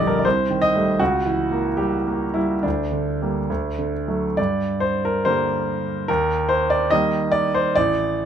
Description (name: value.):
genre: classical, romantic character piece for solo piano.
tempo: 71 BPM.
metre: 2/4.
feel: uneven beats, rubato.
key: G minor.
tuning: A4 = 440 Hz.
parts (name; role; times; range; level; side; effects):
clear grand piano; solo; 0.0-8.3 s; A1 to Eb5; -19 LUFS; right 1 dB; none.
room: light reverb.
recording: close, detailed microphones.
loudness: -19 LUFS.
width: side -8 dB against mid.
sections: 0.0-4.4 A section; 4.4-8.3 B section.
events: none.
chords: 0.2 Am7b5/C; 1.0 C#dim7; 2.6 Gm/D; 3.5 D; 4.4 Gm; 6.1 Eb.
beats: 0.25 | 1.00 1.79 | 2.65 3.49 | 4.38 5.26 | 6.08 6.91 | 7.76.